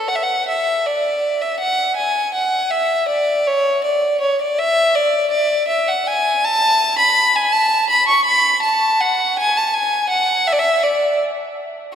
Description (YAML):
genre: classical, baroque-style suite movement for unaccompanied violin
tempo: 81 BPM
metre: 4/4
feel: rubato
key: A major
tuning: A4 = 441 Hz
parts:
  - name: rich violin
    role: solo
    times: 0.0-11.2 s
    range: C#5 to C#6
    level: -15 LUFS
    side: equal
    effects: none
room: wet cathedral reverb, RT60 4.4 s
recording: minimal, uncompressed stereo recording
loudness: -14 LUFS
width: side -8 dB against mid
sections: 0.0-11.9 A section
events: none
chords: none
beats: | 0.10 0.85 1.60 2.35 | 3.10 3.85 4.59 5.32 | 6.06 6.79 7.52 8.26 | 9.00 9.74 10.47